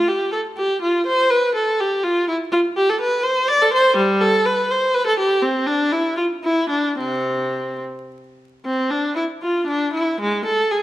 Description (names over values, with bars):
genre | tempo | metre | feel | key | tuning
classical, baroque-style suite movement for unaccompanied viola | 71-84 BPM (dotted quarters) | 6/8 | rubato | C major | A4 = 440 Hz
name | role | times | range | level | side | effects
rich viola | solo | 0.0-10.8 s | C3 to D5 | -17 LUFS | equal | none
room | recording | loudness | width
moderate recital hall reverb, RT60 1.4 s | minimal, uncompressed stereo recording, vinyl crackle | -17 LUFS | side -14 dB against mid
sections
0.0-8.6 A section; 8.6-10.8 A section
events
none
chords
none